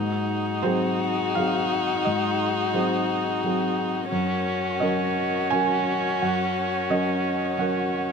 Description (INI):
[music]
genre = neoclassical piano and strings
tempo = 81-89 BPM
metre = 3/4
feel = rubato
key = unclear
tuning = A4 = 440 Hz
[part]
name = dark violin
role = melody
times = 0.0-8.1 s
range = Gb4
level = -27 LUFS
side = left 8 dB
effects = none
[part]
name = felt-muted upright piano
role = accompaniment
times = 0.0-8.1 s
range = Gb2 to Ab5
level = -25 LUFS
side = right 2 dB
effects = none
[part]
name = rich viola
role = accompaniment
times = 0.0-8.1 s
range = Db4 to Eb4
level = -29 LUFS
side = right 3 dB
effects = none
[part]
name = warm chamber string section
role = sustained chords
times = 0.0-8.1 s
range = Gb3 to Bb4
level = -35 LUFS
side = left 2 dB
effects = none
[sound]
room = light reverb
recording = none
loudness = -22 LUFS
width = side -6 dB against mid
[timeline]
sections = 0.0-8.1 A section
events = none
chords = 0.0 Ab7; 4.1 Ebm7/Gb